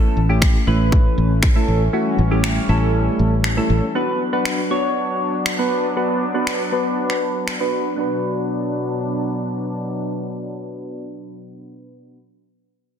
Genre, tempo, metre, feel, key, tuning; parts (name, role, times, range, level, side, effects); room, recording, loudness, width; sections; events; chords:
dance-pop; 119 BPM; 4/4; straight; B minor; A4 = 443 Hz
soft electric-piano-like synth keys; accompaniment; 0.0-12.2 s; A3 to C#5; -22 LUFS; equal; chorus, phaser, sidechain pumping, low-pass filter
sweeping resonant pad; sustained chords; 0.0-12.2 s; B2 to D4; -25 LUFS; left 1 dB; chorus, sidechain pumping, low-pass filter
fingered electric bass; bass; 0.2-3.8 s; A1; -18 LUFS; equal; sidechain pumping
house drum kit; drums; 0.4-7.6 s; finger snaps, kick drum; -20 LUFS; equal; soft clipping on snare
moderate lush hall reverb, RT60 2.1 s; dense, heavily limited modern master; -17 LUFS; side -8 dB against mid
0.0-8.0 A section; 8.0-12.0 B section
filter sweep 0.0-8.0
0.0 A; 3.9 Bm